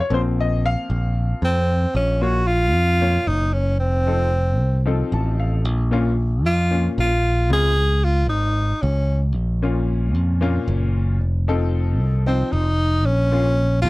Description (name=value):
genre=progressive instrumental, progressive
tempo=227 BPM (eighths)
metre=7/8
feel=straight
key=Bb minor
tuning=A4 = 439 Hz
part: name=clear grand piano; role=accompaniment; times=0.0-13.5 s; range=Bb2 to A5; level=-25 LUFS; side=left 3 dB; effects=none
part: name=modern bright picked electric bass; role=bass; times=0.1-13.9 s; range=F1 to F2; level=-19 LUFS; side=equal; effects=none
part: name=breathy tenor saxophone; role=melody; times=1.4-9.2, 12.3-13.9 s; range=C4 to Ab4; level=-21 LUFS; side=equal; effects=none
room=little or no reverb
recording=dry, close 1970s-style studio recording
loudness=-17 LUFS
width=side -21 dB against mid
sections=0.0-2.0 A section; 2.0-13.9 B section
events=grand piano solo 0.0-2.0; grand piano fill 4.9-5.7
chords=0.1 Bbsus2; 2.0 Bbm; 3.8 F7; 5.7 Bbm; 7.5 Db5; 9.4 Bbm; 11.2 F7; 13.1 Bbm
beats=| 0.11 0.37 0.64 0.90 1.16 1.43 1.69 | 1.96 2.22 2.48 2.75 3.01 3.28 3.54 | 3.80 4.07 4.33 4.60 4.86 5.12 5.39 | 5.65 5.92 6.18 6.45 6.71 6.97 7.24 | 7.50 7.77 8.03 8.29 8.56 8.82 9.09 | 9.35 9.62 9.88 10.14 10.41 10.67 10.94 | 11.20 11.47 11.73 11.99 12.26 12.52 12.79 | 13.05 13.32 13.58 13.85